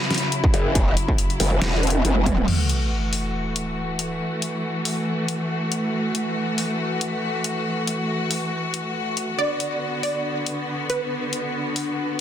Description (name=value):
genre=heavy wobble dubstep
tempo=139 BPM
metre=4/4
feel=swing 54% on 16ths, half-time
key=F# minor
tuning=A4 = 440 Hz
part: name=bright studio string section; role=sustained chords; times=0.0-12.2 s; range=C#3 to F#4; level=-25 LUFS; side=left 1 dB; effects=sidechain pumping, low-pass filter
part: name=dubstep drum kit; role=drums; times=0.1-11.9 s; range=crash cymbal, hi-hat, snare drum, toms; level=-25 LUFS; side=left 1 dB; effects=none
part: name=electronic kick drum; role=drums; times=0.4-2.4 s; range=none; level=-20 LUFS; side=equal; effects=distortion
part: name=growl bass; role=bass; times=0.5-2.5 s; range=E1 to F#1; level=-20 LUFS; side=equal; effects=chorus, overdrive
part: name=sub drop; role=sound effects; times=2.5-4.2 s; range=none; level=-26 LUFS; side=equal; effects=none
part: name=wide unison pluck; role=melody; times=9.4-12.2 s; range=B4 to D5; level=-26 LUFS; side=right 2 dB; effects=digital delay
room=moderate plate reverb, RT60 1.3 s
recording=dense, heavily limited modern master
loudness=-21 LUFS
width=side -10 dB against mid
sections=0.0-2.5 A section; 2.5-12.2 B section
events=drop 0.0-2.5; drum fill 1.6-2.5; impact 2.5-4.2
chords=0.0 F#5; 2.5 F#m7; 9.4 Bm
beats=0.32 | 0.75 1.18 1.62 2.05 | 2.48 2.91 3.34 3.77 | 4.21 4.64 5.07 5.50 | 5.93 6.36 6.80 7.23 | 7.66 8.09 8.52 8.95 | 9.39 9.82 10.25 10.68 | 11.11 11.54 11.98